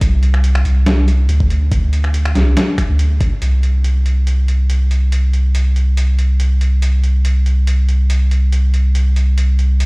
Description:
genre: deep dubstep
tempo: 141 BPM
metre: 4/4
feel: swing 53% on 16ths, half-time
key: unclear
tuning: A4 = 438 Hz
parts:
  - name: soft dub sub bass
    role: bass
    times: 0.0-9.9 s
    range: C2 to D2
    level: -12 LUFS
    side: equal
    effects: none
  - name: electronic kick drum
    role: drums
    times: 0.0-3.3 s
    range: none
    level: -16 LUFS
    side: equal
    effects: overdrive
  - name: trip hop sampler-style drum kit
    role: drums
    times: 0.0-9.9 s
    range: finger snaps, hi-hat, snare drum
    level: -23 LUFS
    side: equal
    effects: overdrive
room: little or no reverb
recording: played on a big sound system in a bare room, stone room reverb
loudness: -12 LUFS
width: side -30 dB against mid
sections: 0.0-3.4 A section; 3.4-9.9 B section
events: none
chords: none

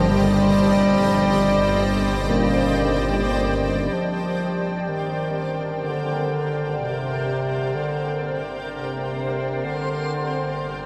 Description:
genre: dark ambient drone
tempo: free time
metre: none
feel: none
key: G minor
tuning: A4 = 444 Hz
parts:
  - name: clear bass clarinet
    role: melody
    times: 0.0-10.9 s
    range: C3 to G3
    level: -25 LUFS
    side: equal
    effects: delay
  - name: granular cloud pad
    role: sustained chords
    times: 0.0-10.9 s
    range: G4 to G5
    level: -28 LUFS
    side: equal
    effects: built-in reverb
  - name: carillon bells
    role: arpeggios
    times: 0.0-9.6 s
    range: Bb2 to D4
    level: -31 LUFS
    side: equal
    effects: delay
  - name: bowed-like drone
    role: drone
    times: 0.0-10.9 s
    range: G1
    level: -30 LUFS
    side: equal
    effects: built-in reverb
  - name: backwards swelling texture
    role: texture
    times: 0.0-10.9 s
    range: C5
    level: -39 LUFS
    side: equal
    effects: none
room: wet huge ambient reverb, RT60 8.4 s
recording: none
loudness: -22 LUFS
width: mono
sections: 0.0-3.9 A section; 3.9-10.9 B section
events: fade-in on synth drone 3.9-10.9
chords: 0.0 Cm/G; 3.9 Gm

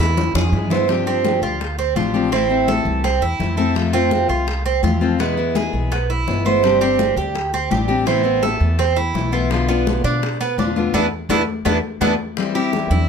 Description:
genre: latin, Cuban son and guajira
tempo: 167 BPM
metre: 4/4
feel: straight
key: A minor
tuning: A4 = 439 Hz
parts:
  - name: picked steel-string acoustic guitar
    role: accompaniment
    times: 0.0-13.1 s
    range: B2 to G4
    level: -22 LUFS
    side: left 8 dB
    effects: none
  - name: Cuban tres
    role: arpeggios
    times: 0.0-13.1 s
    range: B3 to C5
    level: -20 LUFS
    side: right 7 dB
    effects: none
  - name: upright bass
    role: bass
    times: 0.0-13.1 s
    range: G1 to B2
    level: -22 LUFS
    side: equal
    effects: none
  - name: bongos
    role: percussion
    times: 0.0-12.9 s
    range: none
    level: -28 LUFS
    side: left 6 dB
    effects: none
  - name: congas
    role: percussion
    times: 0.2-13.1 s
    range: none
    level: -26 LUFS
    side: left 3 dB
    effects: none
room: light reverb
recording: close, detailed microphones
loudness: -16 LUFS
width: side -6 dB against mid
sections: 0.9-12.4 A section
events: drum fill 0.0-0.9, 11.8-12.4; band accent 10.9-12.4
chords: 0.0 E; 0.9 G7sus4; 2.3 Am; 3.8 F; 5.2 E; 6.6 Gsus4; 8.1 Amadd9; 9.5 Bdim; 10.9 E5; 12.4 D9sus4 (rootless)

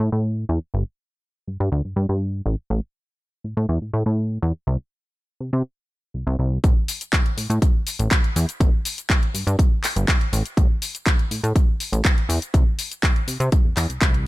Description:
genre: filtered disco house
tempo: 122 BPM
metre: 4/4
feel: straight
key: A minor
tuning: A4 = 440 Hz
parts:
  - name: plucky analog bass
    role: bass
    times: 0.0-14.3 s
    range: G1 to C3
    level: -21 LUFS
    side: equal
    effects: tube saturation, sidechain pumping, low-pass filter
  - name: electronic kick drum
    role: drums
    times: 6.6-14.1 s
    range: none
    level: -18 LUFS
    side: equal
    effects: none
  - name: house drum kit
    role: drums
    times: 6.6-14.2 s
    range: handclaps, hi-hat, shaker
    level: -25 LUFS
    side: left 1 dB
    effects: sidechain pumping on hats, sidechain pumping on perc
room: little or no reverb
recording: none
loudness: -19 LUFS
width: side -18 dB against mid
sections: 0.0-6.6 A section; 6.6-14.3 B section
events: filter sweep on analog synth bass 0.0-6.6; drop 6.6-14.3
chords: none

